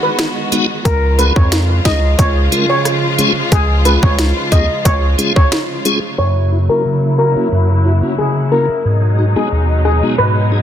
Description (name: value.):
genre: dancehall.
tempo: 90 BPM.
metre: 4/4.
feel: straight.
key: unclear.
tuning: A4 = 440 Hz.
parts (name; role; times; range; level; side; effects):
steel pan; melody; 0.0-10.6 s; G#4 to D#5; -18 LUFS; left 1 dB; low-pass filter, ping-pong delay.
warm studio string section; sustained chords; 0.0-10.6 s; B2 to F#4; -20 LUFS; right 1 dB; sidechain pumping, low-pass filter.
island pop drum kit; drums; 0.2-6.0 s; hi-hat, kick drum, rim click, snare drum; -15 LUFS; equal; overdrive.
tonewheel organ; accompaniment; 0.5-10.6 s; D#2 to A#4; -16 LUFS; left 1 dB; chorus vibrato, fast rotary speaker, low-pass filter.
hard-hitting 808-style bass; bass; 0.9-5.2 s; C#2 to E#2; -14 LUFS; equal; none.
room: light reverb, digital ambience.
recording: dense, heavily limited modern master.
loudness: -11 LUFS.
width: side -10 dB against mid.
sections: 0.0-6.2 A section; 6.2-10.6 B section.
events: filter sweep 6.2-10.6.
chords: 0.0 G#m7; 0.9 C#; 6.2 F#7; 8.9 G#m7.